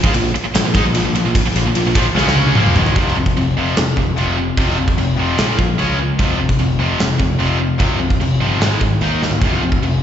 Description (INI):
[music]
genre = hard rock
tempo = 149 BPM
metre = 4/4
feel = straight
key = F minor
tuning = A4 = 440 Hz
[part]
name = distorted electric guitar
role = riff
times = 0.0-10.0 s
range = F2 to Eb4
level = -20 LUFS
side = left 8 dB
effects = overdrive, slapback echo
[part]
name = distorted electric guitar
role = riff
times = 0.0-3.0 s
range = Ab2 to Eb4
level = -23 LUFS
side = right 2 dB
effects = overdrive
[part]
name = tight distorted guitar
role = riff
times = 0.0-10.0 s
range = F2 to Eb4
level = -21 LUFS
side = right 10 dB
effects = distortion, slapback echo
[part]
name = picked electric bass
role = bass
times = 0.0-10.0 s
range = F1 to Ab2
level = -20 LUFS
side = right 1 dB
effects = none
[part]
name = gated 80s drum kit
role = drums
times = 0.0-9.9 s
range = crash cymbal, kick drum, ride cymbal, snare drum, toms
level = -18 LUFS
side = equal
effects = none
[sound]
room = light reverb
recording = live gig heard through the venue's PA, recital hall reverb, nothing above 7.8 kHz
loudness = -14 LUFS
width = side -9 dB against mid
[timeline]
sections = 0.0-3.0 A section; 3.0-10.0 B section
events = drum fill 2.2-3.0, 9.2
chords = 0.0 Bb5; 2.2 Db5; 2.6 Bb5; 3.0 F5; 5.4 Bb5; 5.8 Db5; 6.2 F5; 8.6 Ab5; 9.0 Eb5; 9.4 F5